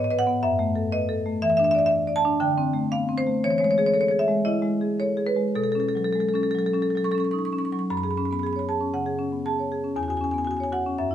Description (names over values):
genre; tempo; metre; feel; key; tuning
classical, contemporary piece for solo marimba; 96-124 BPM; 4/4; rubato; unclear; A4 = 439 Hz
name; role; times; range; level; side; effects
marimba with medium hard mallets; solo; 0.0-11.1 s; E2 to C#6; -22 LUFS; equal; none
room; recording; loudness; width
moderate stone room reverb, RT60 1.0 s; minimal, uncompressed stereo recording; -22 LUFS; side -10 dB against mid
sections
0.0-7.9 A section; 7.9-11.1 B section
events
none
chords
0.4 F#m7; 1.4 E7sus4; 2.4 D5; 3.4 E6; 5.6 B7sus2; 7.9 F#madd9; 10.0 E69